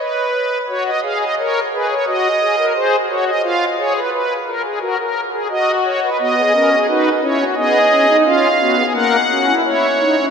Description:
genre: classical, baroque-style 4-part fugue for pipe organ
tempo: 87 BPM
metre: 4/4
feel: straight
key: unclear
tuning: A4 = 440 Hz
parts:
  - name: pipe organ, strings celeste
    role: solo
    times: 0.0-10.3 s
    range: A#3 to F#5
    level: -14 LUFS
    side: equal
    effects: none
room: wet cathedral reverb, RT60 5.3 s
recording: recorded in a church or concert hall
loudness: -14 LUFS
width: side -6 dB against mid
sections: 0.0-10.3 A section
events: none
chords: 0.0 N.C.; 0.7 F#; 2.1 G#7/F#; 3.4 C#/E#; 4.8 F#; 6.2 B; 7.6 C#7/B; 9.0 F#/A#

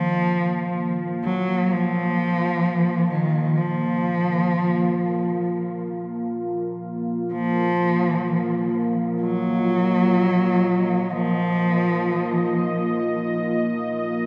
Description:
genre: dark ambient drone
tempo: free time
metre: none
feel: none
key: unclear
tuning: A4 = 441 Hz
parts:
  - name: warm cello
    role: melody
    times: 0.0-13.0 s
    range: Eb3 to Gb3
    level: -24 LUFS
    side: equal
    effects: delay
  - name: deep dark ambient pad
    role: sustained chords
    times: 0.0-14.3 s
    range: Bb3 to F5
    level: -26 LUFS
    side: equal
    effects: chorus, built-in reverb
room: wet cathedral reverb, RT60 5.0 s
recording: dark, warm production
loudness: -22 LUFS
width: mono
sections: 0.0-14.3 A section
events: fade-in on ambient pad 0.0-14.3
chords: 0.0 Bb5

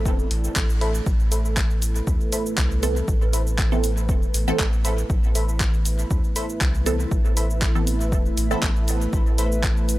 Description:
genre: dub techno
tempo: 119 BPM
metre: 4/4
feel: swing 54% on 16ths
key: A minor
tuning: A4 = 440 Hz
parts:
  - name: dark analog pad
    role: sustained chords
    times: 0.0-10.0 s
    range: A3 to E5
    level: -30 LUFS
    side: right 1 dB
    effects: chorus, sidechain pumping
  - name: warm sub bass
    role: bass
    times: 0.0-10.0 s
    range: E1 to D2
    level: -24 LUFS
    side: equal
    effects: tube saturation, sidechain pumping
  - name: deep house drum kit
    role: drums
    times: 0.1-10.0 s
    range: cabasa, handclaps, hi-hat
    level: -29 LUFS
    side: equal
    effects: dub echo
  - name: electronic kick drum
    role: drums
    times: 0.1-9.7 s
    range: none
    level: -23 LUFS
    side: equal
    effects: none
  - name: wavetable chord stab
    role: riff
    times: 0.8-9.5 s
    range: A4 to B5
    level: -34 LUFS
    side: left 2 dB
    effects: sidechain pumping, dub echo
  - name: filtered dub chord stab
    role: stabs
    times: 2.8-8.7 s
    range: E3 to A4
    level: -29 LUFS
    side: right 2 dB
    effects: phaser, sidechain pumping, dub echo
room: digital ambience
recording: dry, gritty hardware recording, transformer saturation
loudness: -19 LUFS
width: side -17 dB against mid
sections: 0.0-1.1 A section; 1.1-10.0 A section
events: band accent 0.6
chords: 0.0 A5; 1.1 Amadd9

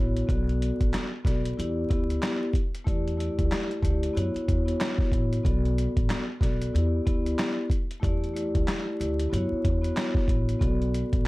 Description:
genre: hip hop, boom-bap hip-hop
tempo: 93 BPM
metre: 4/4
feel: swing 60% on 16ths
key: B minor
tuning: A4 = 440 Hz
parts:
  - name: vibraphone with soft mallets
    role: accompaniment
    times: 0.0-11.3 s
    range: A3 to D5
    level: -29 LUFS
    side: left 1 dB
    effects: cassette tape, high-pass filter, low-pass filter
  - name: upright bass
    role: bass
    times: 0.0-11.2 s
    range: A1 to F#2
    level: -28 LUFS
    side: equal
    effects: none
  - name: boom bap sampler-style drum kit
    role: drums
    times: 0.2-11.3 s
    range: handclaps, hi-hat, kick drum, snare drum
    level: -27 LUFS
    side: equal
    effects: none
room: little or no reverb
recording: dark, warm production, vinyl crackle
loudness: -24 LUFS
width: side -20 dB against mid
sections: 0.0-11.3 A section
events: none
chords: 0.3 Bm7; 1.6 Em7; 2.9 A7sus4; 4.2 F#7sus4; 5.5 Bm7; 6.7 Em7; 8.0 A7sus4; 9.3 F#7sus4; 10.6 Bm7

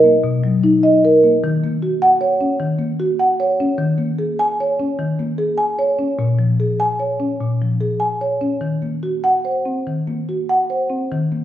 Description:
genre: classical, contemporary piece for solo marimba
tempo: 99 BPM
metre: 4/4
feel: uneven beats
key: Eb minor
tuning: A4 = 444 Hz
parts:
  - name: marimba with soft mallets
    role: solo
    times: 0.0-11.4 s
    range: Bb2 to Ab5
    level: -15 LUFS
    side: equal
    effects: none
room: wet recital hall reverb, RT60 1.4 s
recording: heard from further back in the room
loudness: -16 LUFS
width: side -12 dB against mid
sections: 0.0-11.1 A section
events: none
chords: 0.0 Bmaj7; 1.4 Ebm7; 3.8 Bbm7/Eb; 6.2 Bbm7; 8.6 Ebm6

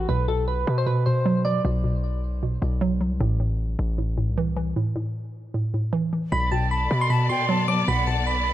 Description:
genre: hip hop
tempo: 154 BPM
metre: 4/4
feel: half-time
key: B phrygian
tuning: A4 = 441 Hz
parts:
  - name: soft electric-piano-like synth keys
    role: melody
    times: 0.0-1.6, 6.3-8.5 s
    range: A4 to D6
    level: -26 LUFS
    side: right 2 dB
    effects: chorus, tremolo, ping-pong delay
  - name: hollow square pluck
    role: accompaniment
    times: 0.0-8.5 s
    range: A2 to F#3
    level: -26 LUFS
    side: right 1 dB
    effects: chorus
  - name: hard-hitting 808-style bass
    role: bass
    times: 0.0-8.5 s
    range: A1 to B2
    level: -25 LUFS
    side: left 1 dB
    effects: none
  - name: rich studio string section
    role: sustained chords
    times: 6.3-8.5 s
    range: B3 to D5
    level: -30 LUFS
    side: left 2 dB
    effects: none
  - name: mellow hollow jazz flute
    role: second line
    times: 6.5-8.2 s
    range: F#5 to B5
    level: -30 LUFS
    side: left 6 dB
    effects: ping-pong delay
room: small room ambience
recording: none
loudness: -21 LUFS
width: side -13 dB against mid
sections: 0.0-6.3 A section; 6.3-8.5 B section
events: break 1.6-6.3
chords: 0.1 B5; 3.2 Am; 6.3 Bm7

